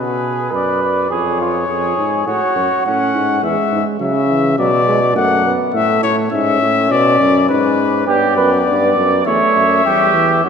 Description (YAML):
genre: classical, imitative canzona for brass ensemble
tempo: 103 BPM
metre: 4/4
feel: straight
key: unclear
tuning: A4 = 440 Hz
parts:
  - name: warm trumpet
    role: melody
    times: 0.0-10.5 s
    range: B4 to F#5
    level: -17 LUFS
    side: left 6 dB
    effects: none
  - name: warm flugelhorn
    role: second line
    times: 0.0-3.4, 8.1-10.5 s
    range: C#4 to D5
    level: -17 LUFS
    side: right 4 dB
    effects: none
  - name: warm bass trombone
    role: bass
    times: 0.0-10.5 s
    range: E2 to C#3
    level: -19 LUFS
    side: right 1 dB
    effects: none
  - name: mellow trombone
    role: accompaniment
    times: 3.4-10.5 s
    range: E3 to C#4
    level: -19 LUFS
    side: right 1 dB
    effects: none
room: wet church reverb, RT60 3.0 s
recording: nothing above 10.4 kHz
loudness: -12 LUFS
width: side -6 dB against mid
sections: 0.0-10.5 A section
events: none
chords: 0.0 G#dim/B; 1.1 C#/E#; 2.3 F#m; 3.4 C#m/E; 4.6 Bm; 5.7 A; 6.9 G#dim; 8.1 G; 9.3 C#dim/E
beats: 0.51 | 1.10 1.68 2.26 2.85 | 3.43 4.01 4.59 5.17 | 5.75 6.33 6.91 7.50 | 8.09 8.67 9.26 9.85 | 10.45